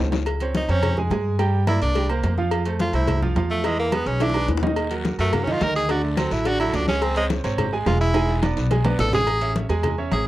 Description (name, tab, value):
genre	Afro-Cuban jazz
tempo	213 BPM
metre	4/4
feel	straight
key	unclear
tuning	A4 = 440 Hz
part	bright grand piano	accompaniment	0.0-10.2 s	D3 to Ab5	-26 LUFS	right 4 dB	none
part	upright bass	bass	0.0-10.3 s	Fb1 to G2	-24 LUFS	equal	none
part	bongos and cowbell	percussion	0.1-10.3 s	none	-31 LUFS	left 8 dB	none
part	congas	percussion	0.1-10.3 s	none	-28 LUFS	left 2 dB	none
part	guiro	percussion	0.1-0.3, 4.8-9.3 s	none	-39 LUFS	left 7 dB	none
part	timbales and agogo bells	percussion	0.1-10.3 s	none	-30 LUFS	right 4 dB	none
part	bright tenor saxophone	melody	0.6-10.3 s	G#3 to Bb4	-24 LUFS	equal	none
room	little or no reverb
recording	dry, close 1970s-style studio recording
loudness	-19 LUFS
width	side -15 dB against mid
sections	0.3-9.3 A section; 9.3-10.3 A section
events	drum fill 0.0, 4.2-4.8, 8.1-9.3; tenor saxophone solo 0.3-10.3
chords	0.3 Dbmaj7; 1.4 Gm; 2.0 C5; 2.5 Fmaj7; 3.6 E7; 4.8 Ebm; 5.9 D; 7.0 Db5; 8.1 E7; 9.3 Amaj7